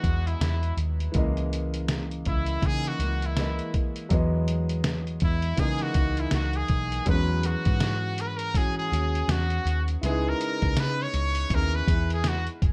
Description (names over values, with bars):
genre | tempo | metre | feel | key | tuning
indie pop, bedroom pop | 81 BPM | 4/4 | swing 60% on 16ths | unclear | A4 = 440 Hz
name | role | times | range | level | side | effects
brilliant trumpet | melody | 0.0-12.5 s | E4 to C#5 | -33 LUFS | equal | lush chorus, tape echo
clear upright piano | accompaniment | 0.0-12.7 s | E3 to D#5 | -38 LUFS | equal | cassette tape
mellow electric guitar | accompaniment | 0.0-12.7 s | C#3 to G#4 | -36 LUFS | equal | subtle chorus, warbly pitch drift
vintage muted picked electric bass | bass | 0.0-12.7 s | F#1 to C#3 | -30 LUFS | equal | none
lo-fi sampler-style drum kit | drums | 0.0-12.7 s | hi-hat, kick drum, snare drum | -30 LUFS | equal | none
room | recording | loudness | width
light reverb | dark, warm production | -26 LUFS | mono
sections
0.0-7.1 A section; 7.1-12.7 B section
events
none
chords
0.0 Emaj7; 1.2 C#m69; 4.1 Emaj7; 5.6 C#m69; 7.1 E69; 10.0 C#m7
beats
0.41 | 1.15 1.89 2.63 3.37 | 4.11 4.85 5.59 6.33 | 7.07 7.81 8.55 9.29 | 10.03 10.77 11.51 12.25